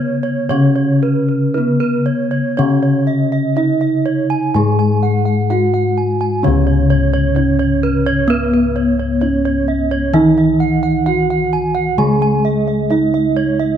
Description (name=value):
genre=Javanese gamelan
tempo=56-65 BPM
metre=4/4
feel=straight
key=C# slendro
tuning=A4 = 440 Hz
part: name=gamelan-type bronze metallophone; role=melody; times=0.0-13.8 s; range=B3-40c to G#4+20c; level=-17 LUFS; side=right 2 dB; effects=none
part: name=gamelan-type bronze metallophone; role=accompaniment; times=0.0-13.8 s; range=C#3 to B3-40c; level=-19 LUFS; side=left 1 dB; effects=none
part: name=gamelan-type bronze metallophone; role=arpeggios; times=0.0-13.8 s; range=B4-40c to G#5+20c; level=-21 LUFS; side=right 6 dB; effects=none
part: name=gamelan-type bossed gongs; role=bass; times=0.0-13.8 s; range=C#2 to D#4+40c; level=-19 LUFS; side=left 4 dB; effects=none
room=light reverb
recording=close, detailed microphones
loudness=-13 LUFS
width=side -9 dB against mid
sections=0.0-6.4 A section; 6.4-13.8 B section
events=none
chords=none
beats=0.48 1.54 | 2.56 3.57 4.55 5.50 | 6.43 7.36 8.28 9.20 | 10.13 11.05 11.97 12.90